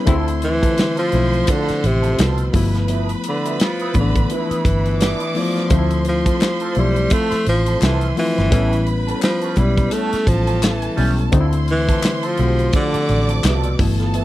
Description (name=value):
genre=lush 1970s-style soul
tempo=85 BPM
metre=4/4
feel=swing 58% on 16ths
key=D dorian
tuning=A4 = 440 Hz
part: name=warm studio violin section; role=second line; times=0.0-14.2 s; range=A4 to D6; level=-28 LUFS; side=right 1 dB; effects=none
part: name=reed electric piano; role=accompaniment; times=0.0-14.2 s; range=D3 to G4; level=-24 LUFS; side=left 4 dB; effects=none
part: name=mellow electric guitar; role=riff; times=0.0-14.2 s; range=F3 to B4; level=-29 LUFS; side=right 6 dB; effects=wah
part: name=vintage muted fingered electric bass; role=bass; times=0.1-14.2 s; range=G1 to D2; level=-19 LUFS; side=equal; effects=none
part: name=modern studio drum kit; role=drums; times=0.1-14.2 s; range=hi-hat, kick drum, snare drum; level=-20 LUFS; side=equal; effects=none
part: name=breathy tenor saxophone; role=melody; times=0.4-14.0 s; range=B2 to A3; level=-21 LUFS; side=equal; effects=none
part: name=group handclap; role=percussion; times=6.4-13.6 s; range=none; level=-30 LUFS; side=left 7 dB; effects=none
room=little or no reverb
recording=dry, close 1970s-style studio recording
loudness=-15 LUFS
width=side -15 dB against mid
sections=0.0-14.2 A section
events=none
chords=0.1 Dm7; 2.5 G13; 5.7 Dm7; 8.5 A7; 11.3 Dm7